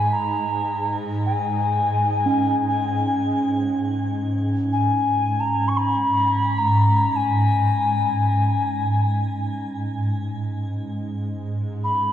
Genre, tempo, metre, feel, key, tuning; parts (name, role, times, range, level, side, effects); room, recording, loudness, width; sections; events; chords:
world meditative, free-time meditation music; free time; G# minor; A4 = 438 Hz
mellow alto ocarina; melody; 0.0-12.1 s; G#5 to C#6; -22 LUFS; left 2 dB; shimmer reverb, diffuse ambient delay
shimmering ambient pad; drone; 0.0-12.1 s; G#2; -23 LUFS; right 1 dB; chorus, built-in reverb
bronze singing bowl; texture; 2.3-10.2 s; C#4; -27 LUFS; right 1 dB
wet cathedral reverb, RT60 4.8 s; worn, warbling old tape, cassette tape, warbly pitch drift; -19 LUFS; side -10 dB against mid
0.0-10.9 A section; 10.9-12.1 A section